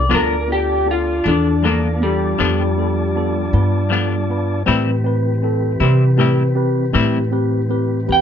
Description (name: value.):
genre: slow blues.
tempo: 53 BPM (dotted quarters).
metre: 12/8.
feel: straight.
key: G mixolydian.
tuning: A4 = 436 Hz.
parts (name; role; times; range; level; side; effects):
electric guitar through a small old amp; melody; 0.0-8.2 s; G3 to G5; -19 LUFS; left 1 dB; lush chorus.
mellow tonewheel organ; sustained chords; 0.0-8.2 s; E3 to A5; -24 LUFS; left 2 dB; slow rotary speaker.
upright bass; bass; 0.0-8.2 s; D2 to C3; -18 LUFS; equal; none.
clean electric guitar; accompaniment; 0.1-7.2 s; G2 to E4; -20 LUFS; left 6 dB; tremolo.
tine electric piano; accompaniment; 0.1-8.2 s; B3 to B4; -23 LUFS; right 2 dB; phaser.
room: light reverb.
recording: nothing above 7.6 kHz.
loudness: -15 LUFS.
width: side -8 dB against mid.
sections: 0.0-8.2 A section.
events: clean electric guitar solo 0.0-8.2.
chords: 0.0 G7; 4.7 Am7.